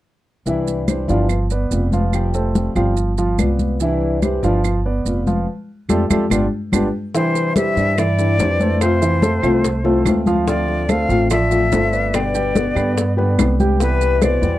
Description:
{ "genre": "latin, Cuban son and guajira", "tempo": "144 BPM", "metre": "4/4", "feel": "straight", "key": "C major", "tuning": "A4 = 441 Hz", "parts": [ { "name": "flamenco guitar", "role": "accompaniment", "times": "0.5-14.6 s", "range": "B2 to G4", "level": "-22 LUFS", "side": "left 4 dB", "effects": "none" }, { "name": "dark concert grand piano", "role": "arpeggios", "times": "0.5-14.6 s", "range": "B2 to G5", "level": "-21 LUFS", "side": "right 2 dB", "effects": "none" }, { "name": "upright bass", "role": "bass", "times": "0.5-14.6 s", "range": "F1 to G2", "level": "-20 LUFS", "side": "right 1 dB", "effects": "none" }, { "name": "congas", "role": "percussion", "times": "0.5-14.6 s", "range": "none", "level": "-21 LUFS", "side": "left 2 dB", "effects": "none" }, { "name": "maracas", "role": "percussion", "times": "0.5-14.6 s", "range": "none", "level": "-32 LUFS", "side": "right 22 dB", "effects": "none" }, { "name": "claves", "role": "percussion", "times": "0.9-14.4 s", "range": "none", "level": "-30 LUFS", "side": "right 14 dB", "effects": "none" }, { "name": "bongos", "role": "percussion", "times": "7.1-14.6 s", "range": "none", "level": "-26 LUFS", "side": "left 6 dB", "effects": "none" }, { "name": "breathy bright jazz flute", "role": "melody", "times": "7.2-14.6 s", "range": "B4 to F5", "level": "-22 LUFS", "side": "left 2 dB", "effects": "none" } ], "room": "little or no reverb", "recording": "dry, close 1970s-style studio recording", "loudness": "-15 LUFS", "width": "side -14 dB against mid", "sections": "0.5-7.1 A section; 7.1-14.6 B section", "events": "band accent 5.5-7.1", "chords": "0.5 Cadd9; 1.3 G7; 2.1 Fadd9; 3.0 G7; 3.8 Cadd9; 4.6 G7; 5.5 Fadd9; 6.3 G7; 7.1 Cadd9; 8.8 Fmaj7; 10.5 Dm7; 12.1 G; 13.8 Cmaj7" }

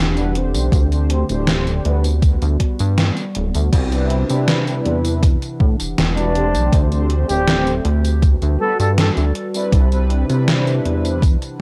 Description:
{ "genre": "vaporwave", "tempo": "80 BPM", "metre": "4/4", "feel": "straight", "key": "G major", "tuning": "A4 = 440 Hz", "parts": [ { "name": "warbly tape-like pad", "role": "sustained chords", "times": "0.0-11.6 s", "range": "C3 to F#5", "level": "-29 LUFS", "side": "equal", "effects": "chorus, built-in reverb, vintage 12-bit sampler grit" }, { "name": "chorused synth bass", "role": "bass", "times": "0.0-11.4 s", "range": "D1 to C3", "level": "-20 LUFS", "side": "equal", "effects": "none" }, { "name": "mellow synth brass", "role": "accompaniment", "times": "0.2-11.2 s", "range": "G3 to C5", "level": "-27 LUFS", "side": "equal", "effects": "lush chorus, tape echo" }, { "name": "gated 80s digital drum machine", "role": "drums", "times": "0.2-11.6 s", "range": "crash cymbal, hi-hat, snare drum, tambourine", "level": "-24 LUFS", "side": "equal", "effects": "gated reverb, gated reverb snare, overdrive" }, { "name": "electronic kick drum", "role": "drums", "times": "0.7-11.4 s", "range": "none", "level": "-17 LUFS", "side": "equal", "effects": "overdrive" }, { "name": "warm flugelhorn", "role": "melody", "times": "6.2-9.1 s", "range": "D4 to A4", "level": "-24 LUFS", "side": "equal", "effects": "vintage 12-bit sampler grit, tape echo" } ], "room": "little or no reverb", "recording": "dry, gritty hardware recording", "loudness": "-17 LUFS", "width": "mono", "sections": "0.0-3.7 A section; 3.7-11.6 B section", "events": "break 3.0-3.7", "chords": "0.0 Em9; 0.7 D7sus4; 1.9 Gmaj7/D; 3.7 Cmaj9; 5.2 Em9; 6.7 D7sus4; 7.9 Gmaj7/D; 9.7 Cmaj9" }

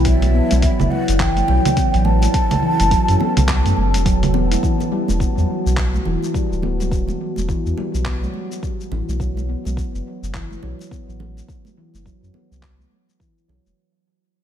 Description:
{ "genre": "organic downtempo", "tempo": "105 BPM", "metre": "4/4", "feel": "swing 60% on 16ths", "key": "E minor", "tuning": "A4 = 440 Hz", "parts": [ { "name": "warbly tape-like pad", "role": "sustained chords", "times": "0.0-13.7 s", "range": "E3 to D5", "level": "-27 LUFS", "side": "left 1 dB", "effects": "chorus, built-in reverb, sidechain pumping" }, { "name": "warm sub bass", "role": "bass", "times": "0.0-13.7 s", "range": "D1 to F#2", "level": "-19 LUFS", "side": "equal", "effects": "none" }, { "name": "breathy mellow ney", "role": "melody", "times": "0.1-4.1 s", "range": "E5 to A5", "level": "-23 LUFS", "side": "right 1 dB", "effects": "tape echo" }, { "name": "handpan", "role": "arpeggios", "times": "0.1-13.6 s", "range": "E3 to E4", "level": "-24 LUFS", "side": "right 1 dB", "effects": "low-pass filter, dub echo" }, { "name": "dusty soul sampler-style drum kit", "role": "drums", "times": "0.1-13.8 s", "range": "congas, handclaps, hi-hat, shaker", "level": "-25 LUFS", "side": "right 2 dB", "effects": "studio ambience" }, { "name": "electronic kick drum", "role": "drums", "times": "0.1-13.3 s", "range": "none", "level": "-22 LUFS", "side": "equal", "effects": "studio ambience" }, { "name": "congas", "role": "percussion", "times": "0.2-13.7 s", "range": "none", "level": "-30 LUFS", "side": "right 5 dB", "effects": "dub echo" } ], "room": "light reverb, small room reverb", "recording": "echo-heavy mix", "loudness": "-16 LUFS", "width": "side -10 dB against mid", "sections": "0.0-4.6 A section; 4.6-13.8 B section", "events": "fade-out 4.6-13.8", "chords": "0.1 Bm7; 2.3 F#dim; 4.6 Esus2; 9.2 Bm7; 11.5 F#dim" }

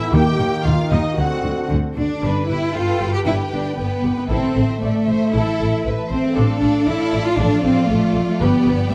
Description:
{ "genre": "cinematic, heroic adventure film score", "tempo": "116 BPM", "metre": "4/4", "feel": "straight", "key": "unclear", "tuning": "A4 = 440 Hz", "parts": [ { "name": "warm symphonic violin section", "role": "melody", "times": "0.0-8.9 s", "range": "F4 to G5", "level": "-31 LUFS", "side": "equal", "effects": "none" }, { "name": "warm symphonic violin section", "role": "second line", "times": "0.0-8.9 s", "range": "B4 to G5", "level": "-32 LUFS", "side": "equal", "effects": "none" }, { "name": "warm symphonic viola section", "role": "accompaniment", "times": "0.0-8.8 s", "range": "D4 to C5", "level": "-31 LUFS", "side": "equal", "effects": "none" }, { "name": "clear trombone section", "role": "sustained chords", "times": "0.0-2.0 s", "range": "D3 to C4", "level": "-29 LUFS", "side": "equal", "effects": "none" }, { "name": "concert harp", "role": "arpeggios", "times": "0.0-8.9 s", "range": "G2 to B5", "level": "-27 LUFS", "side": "equal", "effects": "none" }, { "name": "mellow trumpet section", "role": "stabs", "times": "0.0-1.7 s", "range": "Eb4 to G4", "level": "-33 LUFS", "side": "equal", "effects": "none" }, { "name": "rich symphonic cello section", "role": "bass", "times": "0.1-8.9 s", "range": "D3 to G4", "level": "-22 LUFS", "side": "equal", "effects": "none" }, { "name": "warm symphonic double bass section", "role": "bass", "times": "0.1-8.8 s", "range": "G1 to Eb2", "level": "-24 LUFS", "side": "equal", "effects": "none" } ], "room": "light reverb", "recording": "none", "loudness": "-19 LUFS", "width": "mono", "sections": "0.0-2.2 A section; 2.2-8.9 B section", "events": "none", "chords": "0.1 Eb; 1.2 D7; 2.2 G; 4.3 Am; 6.4 Dm/A; 8.4 G" }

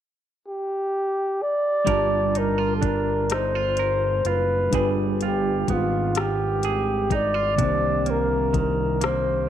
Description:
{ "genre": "slow six-eight R&B", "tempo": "42 BPM (dotted quarters)", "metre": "6/8", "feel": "straight", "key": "G minor", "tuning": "A4 = 440 Hz", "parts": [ { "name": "breathy flugelhorn", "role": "melody", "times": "0.5-9.5 s", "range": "F4 to D5", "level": "-23 LUFS", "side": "equal", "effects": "none" }, { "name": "tine electric piano", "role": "accompaniment", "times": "1.8-9.5 s", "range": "C3 to A5", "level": "-29 LUFS", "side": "equal", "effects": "overdrive, fast stereo tremolo" }, { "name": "semi-hollow electric guitar", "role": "second line", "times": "1.9-9.5 s", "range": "C3 to Bb4", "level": "-29 LUFS", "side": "right 12 dB", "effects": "none" }, { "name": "fat analog bass", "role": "bass", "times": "1.9-9.5 s", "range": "F#1 to C2", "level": "-27 LUFS", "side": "equal", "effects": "none" }, { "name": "smooth R&B drum kit", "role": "drums", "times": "1.9-9.2 s", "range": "hi-hat, kick drum, rim click", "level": "-27 LUFS", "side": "left 4 dB", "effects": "none" } ], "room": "light reverb", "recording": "1960s-style stereo", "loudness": "-20 LUFS", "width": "side -10 dB against mid", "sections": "0.0-1.9 A section; 1.9-9.5 B section", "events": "none", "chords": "0.0 N.C.; 1.9 Gm7; 4.7 G7b9; 7.6 Cm9" }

